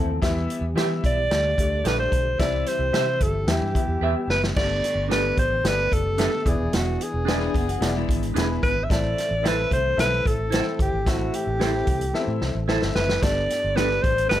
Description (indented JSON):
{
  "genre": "uptempo 1960s-style soul",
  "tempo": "111 BPM",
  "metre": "4/4",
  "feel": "straight",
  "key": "E minor",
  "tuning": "A4 = 440 Hz",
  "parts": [
    { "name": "clear upright piano", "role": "accompaniment", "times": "0.0-14.4 s", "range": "G2 to G5", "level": "-30 LUFS", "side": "left 3 dB", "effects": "none" },
    { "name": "percussive tonewheel organ", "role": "sustained chords", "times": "0.0-14.4 s", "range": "D3 to A4", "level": "-35 LUFS", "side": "equal", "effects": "slow rotary speaker, chorus vibrato" },
    { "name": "electric guitar through a small old amp", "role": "riff", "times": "0.0-0.2, 7.4-8.7 s", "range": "G#3 to B4", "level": "-30 LUFS", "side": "left 6 dB", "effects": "warbly pitch drift" },
    { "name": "vintage muted fingered electric bass", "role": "bass", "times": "0.0-14.4 s", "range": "D#1 to E3", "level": "-27 LUFS", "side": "equal", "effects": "none" },
    { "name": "vintage drum kit", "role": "drums", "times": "0.2-14.4 s", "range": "crash cymbal, hi-hat, kick drum, snare drum", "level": "-26 LUFS", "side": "equal", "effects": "none" },
    { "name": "semi-hollow electric guitar", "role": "stabs", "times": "0.8-13.9 s", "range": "D4 to E5", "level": "-28 LUFS", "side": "right 8 dB", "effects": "none" },
    { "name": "mellow alto saxophone", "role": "melody", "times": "1.1-14.4 s", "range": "F#4 to E5", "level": "-24 LUFS", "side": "equal", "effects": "none" }
  ],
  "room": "light reverb",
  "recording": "none",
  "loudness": "-20 LUFS",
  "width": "side -12 dB against mid",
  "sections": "0.0-4.6 A section; 4.6-14.4 B section",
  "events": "drum fill 4.0-4.6, 12.1-13.2",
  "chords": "0.2 Em; 1.3 Dsus4; 2.4 C; 3.5 Em; 4.6 Gadd9; 6.5 E7; 8.9 Am; 13.2 Gadd9"
}